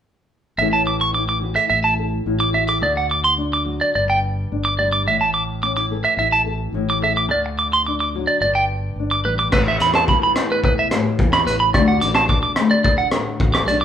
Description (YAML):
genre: highlife guitar band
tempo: 108 BPM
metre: 4/4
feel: straight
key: A mixolydian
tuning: A4 = 439 Hz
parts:
  - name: nylon-string guitar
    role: accompaniment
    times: 0.6-13.8 s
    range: G2 to A4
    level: -24 LUFS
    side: left 3 dB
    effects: none
  - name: electric guitar at the edge of break-up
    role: arpeggios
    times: 0.6-13.8 s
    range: B4 to D6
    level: -18 LUFS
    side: right 2 dB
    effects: none
  - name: fingered electric bass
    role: bass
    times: 0.6-13.8 s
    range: G1 to E2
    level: -25 LUFS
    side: equal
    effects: none
  - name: crunchy breakbeat drum kit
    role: drums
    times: 9.5-13.8 s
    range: crash cymbal, hi-hat, kick drum, rim click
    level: -19 LUFS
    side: left 1 dB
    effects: none
room: moderate large studio reverb, RT60 1.1 s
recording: band playing live in one room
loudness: -16 LUFS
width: side -9 dB against mid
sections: 0.6-9.5 A section; 9.5-13.8 B section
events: none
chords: 0.6 A; 2.8 D; 3.9 G5; 5.1 A5; 7.3 D; 8.4 G5; 9.5 Asus2; 11.7 D